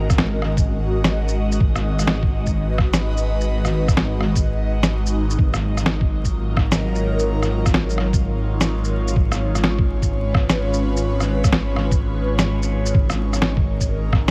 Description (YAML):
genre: future garage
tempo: 127 BPM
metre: 4/4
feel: swing 64% on 16ths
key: G# dorian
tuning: A4 = 441 Hz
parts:
  - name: airy breathy pad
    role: sustained chords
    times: 0.0-14.3 s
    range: F#3 to D#5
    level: -28 LUFS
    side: equal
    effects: chorus, phaser, sidechain pumping
  - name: dark detuned saw bass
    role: bass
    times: 0.0-14.3 s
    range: G#1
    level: -24 LUFS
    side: equal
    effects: sidechain pumping
  - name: electronic kick drum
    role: drums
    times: 0.1-14.2 s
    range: none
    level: -21 LUFS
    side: equal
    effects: none
  - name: electronic rim click, shaker and snare drum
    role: drums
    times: 0.1-14.3 s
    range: none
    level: -25 LUFS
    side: equal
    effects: none
room: digital ambience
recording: vinyl crackle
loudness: -20 LUFS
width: mono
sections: 0.0-14.3 A section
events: none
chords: 0.0 F#69/G#; 1.6 G#m7; 5.4 D#m9/G#; 9.2 C#7/G#; 12.9 F#69/G#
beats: 0.19 0.66 1.13 | 1.60 2.08 2.55 3.02 | 3.49 3.97 4.44 4.91 | 5.38 5.86 6.33 6.80 | 7.27 7.75 8.22 8.69 | 9.16 9.63 10.11 10.58 | 11.05 11.53 12.00 12.47 | 12.94 13.41 13.89